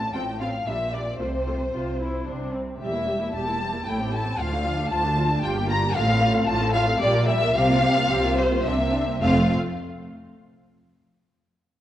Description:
quick classical-period movement for string orchestra; 104-115 BPM; 3/4; straight; F major; A4 = 442 Hz
rich chamber violin section; melody; 0.0-9.5 s; C5 to Bb5; -26 LUFS; left 2 dB
rich chamber violin section; second line; 0.0-9.5 s; F4 to Bb5; -30 LUFS; left 2 dB
warm chamber cello section; bass; 0.0-9.5 s; D2 to C3; -29 LUFS; right 1 dB
warm symphonic double bass section; bass; 0.0-9.5 s; E1 to D2; -28 LUFS; right 1 dB
rich studio viola section; accompaniment; 0.1-9.5 s; F3 to Bb4; -28 LUFS; equal
moderate scoring stage reverb, RT60 1.9 s; worn, warbling old tape, cassette tape, warbly pitch drift; -21 LUFS; side -12 dB against mid
0.0-9.2 A section; 9.2-10.9 B section
0.0 F/A; 0.7 Gm/Bb; 1.2 F5/C; 2.3 Csus2; 2.8 Edim; 3.9 Am7; 4.4 Dm; 5.4 Gm7; 6.0 F/A; 7.0 Gm/Bb; 7.6 C7sus4; 8.7 C9; 9.2 F
0.14 0.67 | 1.20 1.74 2.27 | 2.81 3.34 3.87 | 4.39 4.91 5.43 | 5.96 6.48 7.01 | 7.55 8.10 8.66 | 9.22

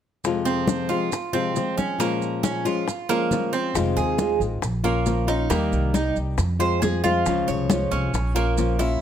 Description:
latin, Cuban son and guajira; 137 BPM; 4/4; straight; F minor; A4 = 440 Hz
flamenco guitar; accompaniment; 0.2-9.0 s; F2 to G4; -25 LUFS; left 6 dB
bongos; percussion; 0.2-9.0 s; -31 LUFS; left 6 dB
congas; percussion; 0.2-8.8 s; -28 LUFS; left 2 dB
maracas; percussion; 0.2-9.0 s; -37 LUFS; right 9 dB
Cuban tres; arpeggios; 0.5-9.0 s; Bb3 to Db5; -25 LUFS; right 6 dB
upright bass; bass; 3.8-9.0 s; F1 to F2; -25 LUFS; right 1 dB
light reverb; -20 LUFS; side -9 dB against mid
0.2-3.8 A section; 3.8-9.0 B section
0.2 Fm; 2.0 Bbm7; 3.8 Fm7; 4.6 Bbm; 5.5 Eb; 6.4 Fm; 7.3 Db; 8.1 Bbm
| 0.24 0.68 1.12 1.56 | 2.00 2.43 2.87 3.31 | 3.75 4.19 4.63 5.07 | 5.51 5.95 6.38 6.82 | 7.26 7.70 8.14 8.58

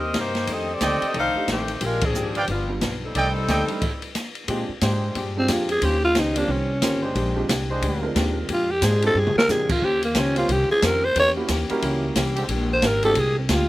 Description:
jazz, big band swing; 180 BPM; 4/4; swing 62% on 8ths; Bb mixolydian; A4 = 440 Hz
warm saxophone section; melody; 0.0-4.1 s; Eb3 to F5; -25 LUFS; left 1 dB
hollow-body jazz guitar; accompaniment; 0.0-13.7 s; F2 to C5; -30 LUFS; left 3 dB; slapback echo
upright bass; bass; 0.0-13.7 s; G1 to Bb2; -26 LUFS; equal
open jazz drum kit; drums; 0.1-13.6 s; crash cymbal, hi-hat, kick drum, ride cymbal, snare drum, toms; -27 LUFS; equal
bright trumpet section; stabs; 0.8-3.6 s; A4 to G5; -24 LUFS; right 2 dB
warm concert grand piano; accompaniment; 1.4-13.2 s; G3 to Bb4; -29 LUFS; right 3 dB; slapback echo
clear trombone section; sustained chords; 4.5-13.1 s; D3 to C5; -30 LUFS; right 1 dB
growling alto saxophone; melody; 5.4-13.7 s; Bb3 to C#5; -21 LUFS; equal
little or no reverb; recorded outdoors, with no room sound; -20 LUFS; side -16 dB against mid
0.0-4.5 A section; 4.5-13.7 B section
band accent 2.0; stop 3.8-4.5; alto saxophone solo 4.5-13.7; drum fill 9.2-9.5
0.5 F13; 1.8 Bb13; 2.5 G7; 3.2 F13; 4.5 Bb13; 5.8 Eb13; 7.2 Bb13; 9.8 Eb13; 11.2 Edim7; 12.5 Bb13
0.14 | 0.48 0.81 1.15 1.48 | 1.81 2.15 2.48 2.82 | 3.15 3.48 3.82 4.15 | 4.49 4.82 5.16 5.49 | 5.82 6.16 6.49 6.82 | 7.16 7.49 7.83 8.16 | 8.49 8.83 9.16 9.49 | 9.83 10.16 10.49 10.83 | 11.16 11.49 11.83 12.16 | 12.49 12.83 13.16 13.49

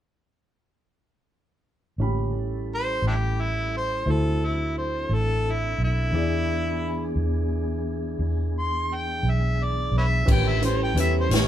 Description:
slow blues; 58 BPM (dotted quarters); 12/8; straight; A4 = 439 Hz
dark grand piano; accompaniment; 2.0-11.5 s; C#4 to B5; -31 LUFS; right 1 dB
mellow tonewheel organ; sustained chords; 2.0-11.5 s; D3 to Bb4; -33 LUFS; left 1 dB; slow rotary speaker
vintage muted fingered electric bass; bass; 2.0-11.5 s; A1 to E2; -25 LUFS; equal
warm harmonica; melody; 2.7-11.5 s; D4 to C6; -27 LUFS; equal; overdrive
swinging big-band drum kit; drums; 10.3-11.5 s; crash cymbal, hi-hat, kick drum, snare drum; -24 LUFS; equal
light reverb; band playing live in one room; -22 LUFS; side -11 dB against mid
2.0-10.3 A section; 10.3-11.5 B section
2.0 A7; 4.1 D7; 6.1 E7; 10.3 A7
| 1.99 3.03 4.07 5.10 | 6.14 7.17 8.21 9.24 | 10.28 11.31

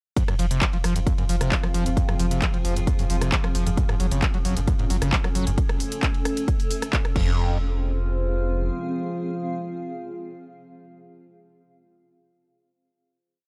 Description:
driving peak-time techno; 133 BPM; 4/4; straight; F phrygian; A4 = 439 Hz
screaming distorted acid line; riff; 0.2-7.6 s; F2 to Gb3; -30 LUFS; equal; distortion, analog chorus, sidechain pumping, analog delay
overtone-sweeping drone; drone; 0.8-10.1 s; F3 to F4; -36 LUFS; equal; chorus, built-in reverb, sidechain pumping
electronic kick drum; drums; 0.2-7.2 s; -26 LUFS; equal
techno drum kit; drums; 0.2-7.3 s; crash cymbal, handclaps, hi-hat, ride cymbal, rim click; -32 LUFS; equal; sidechain pumping on hats, sidechain pumping on cymbals
granular cloud pad; texture; 1.0-10.5 s; C4 to F5; -36 LUFS; equal; built-in reverb, sidechain pumping
saturated sub bass; bass; 0.4-8.7 s; F1 to Gb1; -28 LUFS; equal; tube saturation, sidechain pumping, low-pass filter
little or no reverb; dry, gritty hardware recording, cassette tape; -24 LUFS; mono
0.2-7.4 drop; 7.4-11.0 final note
drop 0.2-7.4
0.2 Fm; 3.8 Gbm; 7.2 Fm
| 0.17 0.62 1.07 1.52 | 1.97 2.42 2.87 3.32 | 3.77 4.22 4.68 5.13 | 5.58 6.03 6.48 6.93 | 7.38 7.83 8.29 8.74 | 9.19 9.64 10.09

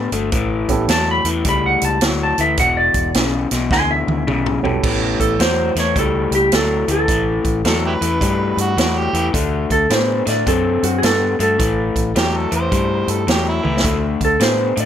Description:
electric blues shuffle; 107 BPM; 4/4; swing 64% on 8ths; A mixolydian; A4 = 440 Hz
electric guitar through a small old amp; riff; 0.0-14.9 s; E2 to C4; -20 LUFS; left 6 dB
vintage muted fingered electric bass; bass; 0.0-14.9 s; E1 to A2; -22 LUFS; right 1 dB
vintage drum kit; drums; 0.1-14.9 s; crash cymbal, hi-hat, kick drum, snare drum, toms; -21 LUFS; right 2 dB
warm upright piano; accompaniment; 0.7-0.9, 4.6-5.4 s; B3 to A4; -22 LUFS; right 7 dB
clean lap steel guitar; melody; 0.9-14.9 s; F#4 to C6; -19 LUFS; right 2 dB
overdriven harmonica; second line; 7.7-14.0 s; E4 to C5; -23 LUFS; right 4 dB; analog delay
light reverb; -15 LUFS; side -9 dB against mid
0.0-4.8 A section; 4.8-14.9 B section
electric slide guitar solo 0.0-4.8; drum fill 3.7-4.8, 13.6
0.3 A7; 2.6 E7(no3); 4.8 A7; 9.3 D7; 11.6 A7(no3); 13.8 D7(no3)
| 0.33 0.89 1.45 2.02 | 2.58 3.14 3.71 4.27 | 4.83 5.40 5.96 6.52 | 7.08 7.65 8.21 8.78 | 9.34 9.90 10.46 11.03 | 11.59 12.15 12.72 13.28 | 13.84 14.40

